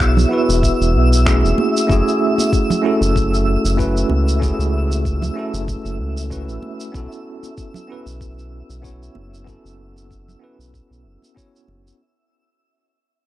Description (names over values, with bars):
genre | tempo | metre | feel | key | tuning
sunset chillout | 95 BPM | 4/4 | swing 55% on 16ths | unclear | A4 = 439 Hz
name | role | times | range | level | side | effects
bell-like tine electric piano | accompaniment | 0.0-12.0 s | A3 to C#5 | -20 LUFS | right 1 dB | medium stereo tremolo, auto-pan, analog delay
round analog bass | bass | 0.0-11.9 s | E1 to C#2 | -18 LUFS | equal | none
electronic finger snaps and shaker | drums | 0.0-12.0 s | none | -26 LUFS | right 1 dB | none
electronic kick drum | drums | 0.0-11.5 s | none | -22 LUFS | equal | none
twinkling granular texture | texture | 0.0-12.0 s | E5 to E6 | -26 LUFS | left 1 dB | built-in reverb
congas | percussion | 0.2-11.8 s | none | -24 LUFS | right 4 dB | none
room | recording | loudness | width
digital ambience | dry, gritty hardware recording, transformer saturation, cassette tape | -15 LUFS | side -14 dB against mid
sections
0.0-12.0 A section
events
fade-out 0.0-12.0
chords
0.0 E; 1.6 F#m7; 6.9 B7sus4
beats
0.00 0.63 1.26 | 1.89 2.52 3.15 3.79 | 4.42 5.05 5.68 6.31 | 6.94 7.58 8.21 8.84 | 9.47 10.10 10.73 11.36